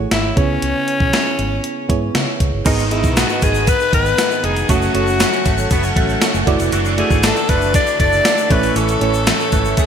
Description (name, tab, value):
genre	1980s-style pop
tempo	118 BPM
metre	4/4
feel	straight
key	unclear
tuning	A4 = 441 Hz
part	FM electric piano with auto-pan	accompaniment	0.0-9.9 s	G#2 to D#5	-22 LUFS	right 5 dB	none
part	vintage muted fingered electric bass	bass	0.0-9.7 s	E#1 to C#3	-21 LUFS	equal	none
part	raspy alto saxophone	melody	0.1-9.9 s	C#4 to D5	-19 LUFS	left 3 dB	ping-pong delay
part	gated 80s digital drum machine	drums	0.1-9.9 s	crash cymbal, hi-hat, kick drum, snare drum, tambourine	-18 LUFS	equal	gated reverb, gated reverb snare
part	crunchy overdriven guitar	accompaniment	2.6-9.9 s	F#2 to D4	-27 LUFS	left 1 dB	ensemble chorus
part	string machine, full ensemble	sustained chords	2.7-9.9 s	A4 to D#6	-25 LUFS	left 1 dB	phaser, ensemble chorus
part	direct-recorded clean electric guitar	riff	2.7-9.9 s	D#3 to F#4	-24 LUFS	right 5 dB	ensemble chorus
part	egg shaker	percussion	2.7-9.9 s	none	-32 LUFS	left 9 dB	none
room	moderate lush hall reverb, RT60 2.0 s, digital ambience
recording	bright 1980s-style digital production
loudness	-13 LUFS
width	side -8 dB against mid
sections	0.0-2.7 A section; 2.7-9.9 B section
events	none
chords	0.4 C#m7; 2.7 G#m; 4.7 F#m; 6.5 Dadd9; 8.5 A